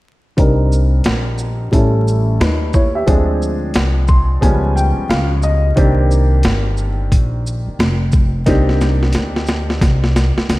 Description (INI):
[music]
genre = hip hop, jazz-hop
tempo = 89 BPM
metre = 4/4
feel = swing 64% on 16ths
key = C minor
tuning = A4 = 441 Hz
[part]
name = warm upright piano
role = accompaniment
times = 0.4-10.6 s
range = Eb3 to C6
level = -19 LUFS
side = equal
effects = low-pass filter
[part]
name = upright bass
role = bass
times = 0.4-10.6 s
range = F1 to Eb2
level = -16 LUFS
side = equal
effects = none
[part]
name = boom bap sampler-style drum kit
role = drums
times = 0.4-10.6 s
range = hi-hat, kick drum, shaker, snare drum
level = -16 LUFS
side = equal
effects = none
[sound]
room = light reverb, small room ambience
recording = vinyl crackle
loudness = -13 LUFS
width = side -18 dB against mid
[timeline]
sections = 0.4-10.6 A section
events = filter sweep on upright piano 0.4-10.6; upright piano fill 3.8-5.8; drum fill 8.5-10.6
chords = 0.4 Cm9; 1.7 A7; 3.1 Dm7b5; 4.4 Db7#11; 5.8 Cm9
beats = | 0.38 1.05 1.73 2.40 | 3.08 3.75 4.42 5.10 | 5.77 6.45 7.12 7.80 | 8.47 9.14 9.82 10.49